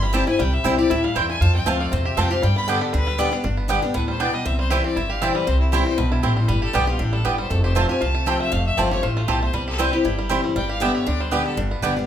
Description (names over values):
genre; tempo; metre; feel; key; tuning
bluegrass; 236 BPM; 4/4; swing 54% on 8ths; G mixolydian; A4 = 443 Hz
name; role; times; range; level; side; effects
bluegrass banjo; melody; 0.0-12.1 s; E3 to G4; -30 LUFS; right 4 dB; none
bright fiddle; melody; 0.0-11.6 s; D4 to B5; -28 LUFS; left 2 dB; none
picked steel-string acoustic guitar; accompaniment; 0.0-12.1 s; F2 to G4; -24 LUFS; left 3 dB; none
upright bass; bass; 0.0-12.0 s; F1 to G2; -23 LUFS; equal; none
mandolin; stabs; 0.1-11.9 s; B3 to A5; -24 LUFS; right 4 dB; none
bright fiddle; second line; 2.7-3.4 s; A4 to D5; -27 LUFS; left 5 dB; none
room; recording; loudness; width
moderate large studio reverb, RT60 0.8 s; band playing live in one room; -18 LUFS; side -10 dB against mid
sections
0.0-3.4 A section; 3.4-12.1 B section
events
fiddle solo 0.0-3.4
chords
0.0 C; 1.4 F; 2.4 G; 4.5 C; 6.5 G; 7.5 F; 9.5 C; 10.6 G